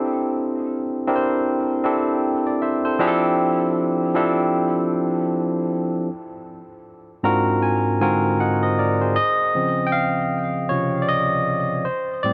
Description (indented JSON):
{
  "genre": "R&B",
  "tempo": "78 BPM",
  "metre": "4/4",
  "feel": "swing 60% on 16ths",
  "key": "unclear",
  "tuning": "A4 = 438 Hz",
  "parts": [
    { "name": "barky tine electric piano", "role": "solo", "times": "0.0-12.3 s", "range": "Ab2 to Bb5", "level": "-21 LUFS", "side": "equal", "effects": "overdrive, tape echo" }
  ],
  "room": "moderate spring reverb, RT60 2.7 s",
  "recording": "cassette tape",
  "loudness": "-21 LUFS",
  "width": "mono",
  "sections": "0.0-9.2 A section; 9.2-12.3 B section",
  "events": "tine electric piano fill 6.8-9.2; tine electric piano solo 9.2-12.3",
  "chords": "0.0 Am7; 3.0 Fmaj9; 6.1 Ab13; 9.2 Dbmaj9"
}